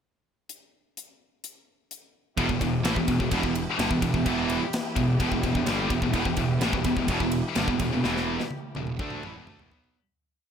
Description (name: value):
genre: heavy metal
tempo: 127 BPM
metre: 4/4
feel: straight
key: E minor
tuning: A4 = 440 Hz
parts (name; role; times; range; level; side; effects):
- tight metal drum kit; drums; 0.5-9.9 s; hi-hat, kick drum, ride cymbal, snare drum, toms; -30 LUFS; left 1 dB; none
- muted studio string section; sustained chords; 2.4-9.9 s; E3 to G4; -37 LUFS; left 3 dB; none
- distorted electric guitar; riff; 2.4-9.9 s; E2 to D4; -29 LUFS; right 8 dB; distortion
- heavy high-gain guitar; riff; 2.4-9.9 s; E2 to D4; -31 LUFS; equal; distortion
- scooped high-gain guitar; riff; 2.4-10.0 s; E2 to D4; -30 LUFS; left 10 dB; distortion
- fuzz picked electric bass; bass; 2.4-9.9 s; E1 to D2; -32 LUFS; equal; overdrive
room: little or no reverb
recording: none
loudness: -23 LUFS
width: side -8 dB against mid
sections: 0.5-2.4 pickup bar; 2.4-10.0 riff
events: fade-out 8.0-10.0; drum fill 8.0-10.0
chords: 0.5 N.C.; 2.4 Em